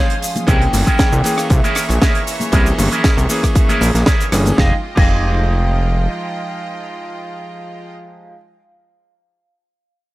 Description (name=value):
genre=nu-disco, nu disco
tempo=117 BPM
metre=4/4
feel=straight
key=F minor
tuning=A4 = 440 Hz
part: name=vibraphone with soft mallets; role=melody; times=0.0-8.3 s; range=F5 to G5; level=-26 LUFS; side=right 2 dB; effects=vintage 12-bit sampler grit, tape echo
part: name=bright electric grand piano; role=accompaniment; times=0.0-8.4 s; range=E3 to G5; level=-24 LUFS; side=equal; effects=sidechain pumping
part: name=clear studio string section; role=sustained chords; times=0.0-7.9 s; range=Ab3 to Eb6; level=-29 LUFS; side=equal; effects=sidechain pumping
part: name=electric guitar with an envelope filter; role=riff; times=0.0-8.4 s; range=E4 to Eb5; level=-23 LUFS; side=right 2 dB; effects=lush chorus
part: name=tight funk drum kit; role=drums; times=0.1-5.1 s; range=cabasa, crash cymbal, hi-hat, rim click, snare drum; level=-22 LUFS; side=right 1 dB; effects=none
part: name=tambourine and congas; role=percussion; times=0.2-4.6 s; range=none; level=-27 LUFS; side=left 2 dB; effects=none
part: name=fat analog bass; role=bass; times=0.5-6.1 s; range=F1 to C2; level=-16 LUFS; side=equal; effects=tube saturation
part: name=electronic kick drum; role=drums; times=0.5-5.1 s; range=none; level=-15 LUFS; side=equal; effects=none
room=small room reverb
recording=dry, gritty hardware recording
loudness=-13 LUFS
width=side -18 dB against mid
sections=0.0-4.6 A section; 4.6-8.7 B section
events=drop 0.0-4.6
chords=0.5 C7b9b13; 4.6 Fm9